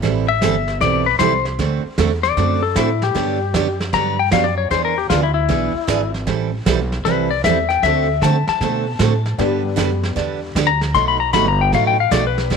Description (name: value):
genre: country, western swing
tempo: 154 BPM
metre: 4/4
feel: swing 66% on 8ths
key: G major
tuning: A4 = 440 Hz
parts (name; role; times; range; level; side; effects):
- picked steel-string acoustic guitar; accompaniment; 0.0-12.6 s; B2 to A4; -21 LUFS; right 12 dB; none
- upright bass; bass; 0.0-12.6 s; G1 to D3; -21 LUFS; right 1 dB; none
- vintage brush drum kit; drums; 0.0-12.6 s; brushed snare drum, hi-hat, kick drum, snare drum; -25 LUFS; right 2 dB; none
- clean lap steel guitar; second line; 0.3-12.6 s; E4 to C6; -18 LUFS; left 11 dB; none
- honky-tonk upright piano; accompaniment; 9.4-10.5 s; D3 to B4; -23 LUFS; left 11 dB; none
room: light reverb, small room ambience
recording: 1960s-style stereo with parts hard left and right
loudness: -15 LUFS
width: side -6 dB against mid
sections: 0.0-12.6 A section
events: electric slide guitar solo 0.0-12.6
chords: 0.0 Cmaj7; 1.6 D7; 3.2 Gmaj7; 4.7 E7; 6.3 Am7; 7.8 D7; 9.4 G; 11.0 B7